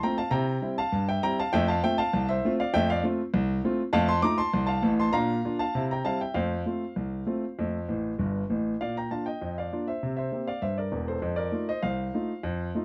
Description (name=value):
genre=ragtime piano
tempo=99 BPM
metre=2/4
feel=straight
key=F major, Bb major from 8.8 s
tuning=A4 = 440 Hz
part: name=warm grand piano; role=solo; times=0.0-12.8 s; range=E1 to D6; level=-28 LUFS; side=equal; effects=none
room=light reverb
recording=dry, close 1970s-style studio recording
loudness=-28 LUFS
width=mono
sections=0.0-8.8 A section; 8.8-12.8 B section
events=grand piano fill 7.9-8.8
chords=0.3 C; 1.5 F; 3.9 F7; 5.1 Bb; 5.7 C; 6.4 F; 8.8 Bb; 10.0 C7; 11.2 F7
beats=| 0.31 0.92 | 1.52 2.12 | 2.73 3.33 | 3.93 4.53 | 5.13 5.74 | 6.35 6.97 | 7.58 8.19 | 8.81 9.41 | 10.02 10.62 | 11.22 11.83 | 12.43